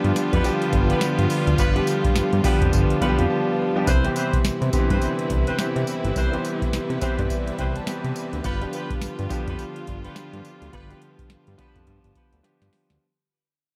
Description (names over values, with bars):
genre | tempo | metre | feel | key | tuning
R&B, new jack swing | 105 BPM | 4/4 | swing 60% on 16ths | unclear | A4 = 440 Hz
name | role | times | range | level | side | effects
clear concert grand piano | accompaniment | 0.0-13.0 s | D3 to B5 | -28 LUFS | equal | none
warm studio string section | sustained chords | 0.0-13.0 s | C3 to B4 | -30 LUFS | equal | none
fat analog bass | bass | 0.0-13.0 s | G1 to C3 | -27 LUFS | equal | none
booming analog drum machine | drums | 0.0-13.0 s | hi-hat, kick drum, snare drum, tambourine | -27 LUFS | equal | none
mellow horn section | stabs | 0.3-12.4 s | B3 to C5 | -33 LUFS | equal | digital delay
room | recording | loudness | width
small room ambience | none | -22 LUFS | mono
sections
0.0-3.9 A section; 3.9-13.0 B section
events
grand piano fill 2.7-3.9, 6.7-8.4; break 3.3-3.9; fade-out 3.9-13.0; drum fill 12.4-13.0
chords
0.0 G7; 3.9 Cmaj7; 8.4 G7